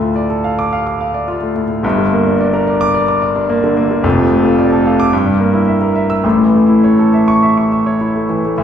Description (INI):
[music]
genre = classical, virtuoso piano study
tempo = 100-111 BPM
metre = 4/4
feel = rubato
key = D minor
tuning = A4 = 440 Hz
[part]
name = clear concert grand piano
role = solo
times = 0.0-8.6 s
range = F1 to E6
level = -11 LUFS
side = equal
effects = none
[sound]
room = wet recital hall reverb, RT60 1.4 s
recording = heard from further back in the room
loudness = -11 LUFS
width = side -8 dB against mid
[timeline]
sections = 0.0-8.6 A section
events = none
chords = 0.0 Dm; 1.8 Gm; 4.0 Dm/F; 5.1 Edim/G; 6.2 A